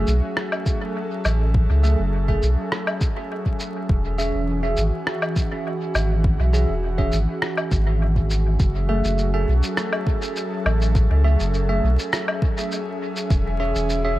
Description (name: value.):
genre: ambient dub.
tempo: 102 BPM.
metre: 4/4.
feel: straight.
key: F# minor.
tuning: A4 = 444 Hz.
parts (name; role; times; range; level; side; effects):
airy breathy pad; sustained chords; 0.0-14.2 s; E3 to E5; -27 LUFS; equal; chorus.
bell-like tine electric piano; stabs; 0.0-14.2 s; A3 to E5; -28 LUFS; right 2 dB; phaser, dub echo.
warm sub bass; bass; 0.0-14.2 s; E1 to C#2; -20 LUFS; equal; none.
electronic shaker, rim click and woodblock; drums; 0.1-14.0 s; none; -28 LUFS; left 1 dB; dub echo.
electronic kick drum; drums; 0.7-13.4 s; none; -21 LUFS; equal; none.
room: light reverb.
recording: vinyl crackle.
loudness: -19 LUFS.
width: side -16 dB against mid.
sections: 0.0-8.6 A section; 8.6-14.2 B section.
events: none.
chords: 0.0 F#m9; 3.9 E6; 8.6 F#m9; 13.3 E6.